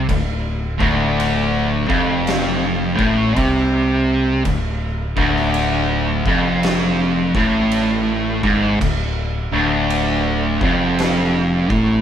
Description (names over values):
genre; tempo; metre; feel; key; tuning
stoner and doom metal; 55 BPM; 4/4; swing 65% on 8ths; D minor; A4 = 440 Hz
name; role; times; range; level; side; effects
fuzz guitar; riff; 0.0-12.0 s; D2 to C3; -17 LUFS; equal; distortion
growling fingered electric bass; bass; 0.0-12.0 s; D1 to C2; -24 LUFS; equal; overdrive
oversized low-tuned drum kit; drums; 0.1-11.9 s; crash cymbal, kick drum, snare drum; -24 LUFS; equal; none
room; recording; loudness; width
moderate small room reverb, RT60 0.5 s; band playing live in one room; -15 LUFS; side -9 dB against mid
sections
0.0-12.0 A section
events
none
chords
0.0 Dm